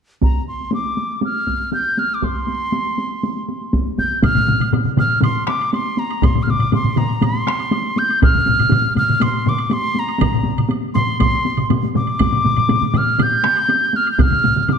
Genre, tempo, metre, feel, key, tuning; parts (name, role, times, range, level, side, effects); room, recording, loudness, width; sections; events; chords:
japanese traditional, taiko drum ensemble; 120 BPM; 4/4; straight; C suspended pentatonic; A4 = 442 Hz
mellow piccolo; melody; 0.2-14.8 s; Bb5 to G6; -19 LUFS; equal
taiko ensemble; percussion; 0.2-14.8 s; -22 LUFS; equal
taiko ensemble; percussion; 0.2-14.3 s; -19 LUFS; right 1 dB
solo taiko drums; percussion; 4.2-14.8 s; -21 LUFS; left 6 dB
taiko ensemble; percussion; 4.2-14.8 s; -22 LUFS; right 5 dB
woodblock; percussion; 4.2-14.8 s; -34 LUFS; right 7 dB
wet recital hall reverb, RT60 1.3 s; dark, warm production; -15 LUFS; side -6 dB against mid
0.2-4.2 A section; 4.2-14.8 B section